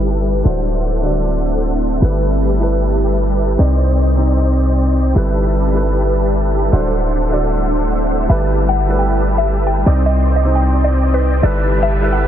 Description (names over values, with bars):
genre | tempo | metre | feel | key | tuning
future bass | 153 BPM | 4/4 | half-time | G major | A4 = 443 Hz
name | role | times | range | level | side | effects
clear grand piano | accompaniment | 0.0-12.3 s | C3 to D5 | -21 LUFS | equal | digital delay
ethereal airy pad | sustained chords | 0.0-12.3 s | C3 to B4 | -24 LUFS | equal | ensemble chorus, built-in reverb
supersaw chords | riff | 0.0-12.3 s | G3 to A5 | -21 LUFS | right 1 dB | ensemble chorus, low-pass filter, digital delay
warm 808-style bass | bass | 0.0-12.3 s | D1 to C2 | -16 LUFS | equal | none
mallet-like synth pluck | melody | 8.3-12.3 s | B4 to G5 | -20 LUFS | left 1 dB | chorus, phaser, ping-pong delay
room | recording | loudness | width
light reverb, digital ambience | dense, heavily limited modern master, low-pass filter | -13 LUFS | side -10 dB against mid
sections
0.0-12.3 A section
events
filter sweep on supersaw synth 0.0-12.3; filter sweep 0.0-12.3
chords
0.5 D7; 2.0 G69; 3.6 Cmadd9; 5.2 G69; 6.7 D7; 8.3 G69; 9.9 Cmadd9; 11.4 G69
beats
0.06 | 0.45 0.84 1.24 1.63 | 2.02 2.41 2.81 3.20 | 3.59 3.98 4.37 4.77 | 5.16 5.55 5.94 6.33 | 6.73 7.12 7.51 7.90 | 8.29 8.69 9.08 9.47 | 9.86 10.26 10.65 11.04 | 11.43 11.82 12.22